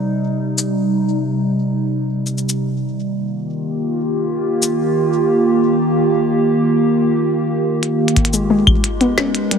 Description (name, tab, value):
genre	IDM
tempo	89 BPM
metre	4/4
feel	straight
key	unclear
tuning	A4 = 439 Hz
part	warbly tape-like pad	sustained chords	0.0-9.6 s	C3 to Cb5	-16 LUFS	right 1 dB	chorus, built-in reverb, phaser, vintage 12-bit sampler grit
part	glitchy drum kit	drums	0.6-9.6 s	cabasa, claves, hi-hat, snare drum	-17 LUFS	left 2 dB	none
part	electronic kick drum	drums	8.2-8.8 s	none	-17 LUFS	equal	none
part	warbly dusty pluck	arpeggios	8.3-9.6 s	G3 to Db4	-17 LUFS	left 2 dB	analog chorus, tape echo
room	moderate huge ambient reverb, RT60 6.3 s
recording	none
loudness	-15 LUFS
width	side -7 dB against mid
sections	0.0-8.2 A section; 8.2-9.6 B section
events	filter sweep on ambient pad 0.0-8.2; drum fill 7.8-8.2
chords	0.0 Cm; 2.8 Eb; 8.2 Abmadd9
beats	| 0.07 0.75 1.42 2.10 | 2.77 3.44 4.12 4.79 | 5.47 6.14 6.82 7.49 | 8.16 8.84 9.51